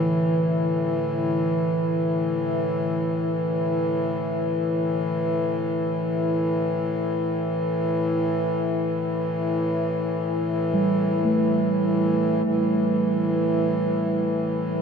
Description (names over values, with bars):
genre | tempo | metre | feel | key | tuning
world meditative, free-time meditation music | free time | none | none | unclear | A4 = 440 Hz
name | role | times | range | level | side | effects
hand-pumped harmonium | drone | 0.0-14.8 s | A2 to E3 | -22 LUFS | left 1 dB | none
quartz singing bowl | texture | 0.0-14.8 s | D3 to A3 | -27 LUFS | right 3 dB | none
room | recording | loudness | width
wet huge ambient reverb, RT60 8.7 s | none | -21 LUFS | side -6 dB against mid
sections
0.0-14.8 A section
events
none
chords
none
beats
free time